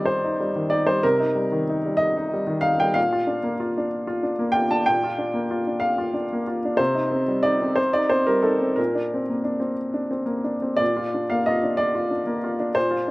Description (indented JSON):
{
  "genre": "neoclassical minimalist piano",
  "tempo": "58-64 BPM (dotted quarters)",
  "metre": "6/8",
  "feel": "rubato",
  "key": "Bb major",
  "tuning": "A4 = 443 Hz",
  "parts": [
    { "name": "clear upright piano", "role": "solo", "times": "0.0-13.1 s", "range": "Bb2 to A5", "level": "-20 LUFS", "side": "equal", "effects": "slapback echo" }
  ],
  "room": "little or no reverb",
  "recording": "recorded outdoors, with no room sound",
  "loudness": "-20 LUFS",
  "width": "side -21 dB against mid",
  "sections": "0.0-10.8 A section; 10.8-13.1 A section",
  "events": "none",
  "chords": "0.0 Cm; 3.0 Bb; 6.8 Cm; 8.8 Bbadd9; 10.8 Bb"
}